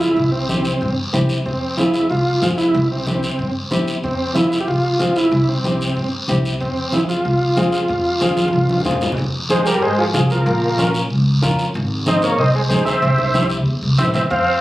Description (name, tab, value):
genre	latin, cumbia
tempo	187 BPM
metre	4/4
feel	straight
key	F harmonic minor, F minor from 9.2 s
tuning	A4 = 440 Hz
part	overdriven combo organ	melody	0.0-14.6 s	C4 to F5	-18 LUFS	right 1 dB	none
part	flamenco guitar	accompaniment	0.0-14.2 s	C4 to Bb4	-24 LUFS	left 1 dB	none
part	upright bass	bass	0.0-14.6 s	G1 to Ab2	-21 LUFS	equal	none
part	guiro	percussion	0.0-14.6 s	none	-27 LUFS	left 1 dB	none
part	congas	percussion	0.2-14.5 s	none	-24 LUFS	equal	none
part	brilliant trombone	second line	9.5-14.6 s	F3 to C4	-25 LUFS	left 2 dB	none
room	moderate large studio reverb, RT60 1.1 s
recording	recorded on a phone in the room, club reverb, compression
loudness	-15 LUFS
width	side -16 dB against mid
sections	0.0-9.2 A section; 9.2-14.6 B section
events	drum fill 8.4-9.2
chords	0.2 C; 1.5 Fm; 2.7 C; 4.0 Fm; 5.3 C; 6.6 Fm; 10.5 Bbm; 11.7 Ab; 13.0 C